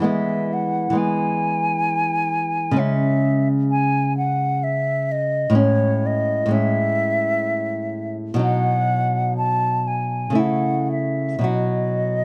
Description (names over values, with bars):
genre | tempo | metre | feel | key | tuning
romantic duo for flute and classical guitar | 53-67 BPM | 3/4 | rubato | unclear | A4 = 438 Hz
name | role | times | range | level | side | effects
mellow hollow silver concert flute | melody | 0.0-12.2 s | C#5 to A5 | -25 LUFS | equal | none
nylon-string guitar | accompaniment | 0.0-12.2 s | A2 to F#4 | -23 LUFS | equal | none
room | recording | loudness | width
moderate recital hall reverb, RT60 1.8 s | close, detailed microphones | -21 LUFS | mono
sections
0.0-12.2 A section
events
none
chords
0.1 E; 2.8 C#m; 5.6 Amaj7; 8.4 B; 10.4 A/C#; 11.5 B